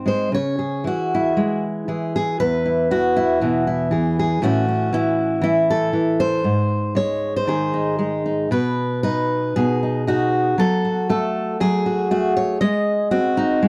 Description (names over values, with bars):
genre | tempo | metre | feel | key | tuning
folk, solo fingerstyle acoustic guitar | 118 BPM | 4/4 | rubato | C# minor | A4 = 439 Hz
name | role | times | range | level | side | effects
fingerpicked steel-string acoustic guitar | solo | 0.0-13.7 s | E2 to D#5 | -20 LUFS | equal | none
room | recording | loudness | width
small room ambience | dry, close 1970s-style studio recording | -20 LUFS | mono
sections
0.3-13.7 A section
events
none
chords
0.3 C#m; 2.4 E; 4.4 A; 6.4 G#; 8.5 B; 10.6 F#m; 12.6 G#7